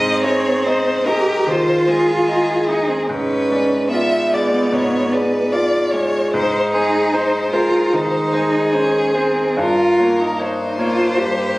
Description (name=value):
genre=classical, slow romantic movement for piano trio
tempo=74 BPM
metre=4/4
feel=rubato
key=Ab major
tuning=A4 = 440 Hz
part: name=warm violin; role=melody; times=0.0-11.6 s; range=Ab4 to Fb5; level=-20 LUFS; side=equal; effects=none
part: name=rich cello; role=second line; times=0.0-11.6 s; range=Cb4 to G4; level=-19 LUFS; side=right 1 dB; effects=none
part: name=bright grand piano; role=accompaniment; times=0.0-11.6 s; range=G2 to Eb5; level=-19 LUFS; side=equal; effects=none
room=moderate stone room reverb, RT60 1.2 s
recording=recorded on a phone in the room, club reverb, compression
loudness=-15 LUFS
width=side -20 dB against mid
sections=0.0-11.6 A section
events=none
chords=0.0 Ab; 3.1 Abdim7; 6.3 Ab; 9.6 Eb7/G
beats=0.65 1.48 2.28 | 3.08 3.90 4.71 5.52 | 6.33 7.13 7.93 8.74 | 9.60 10.40 11.19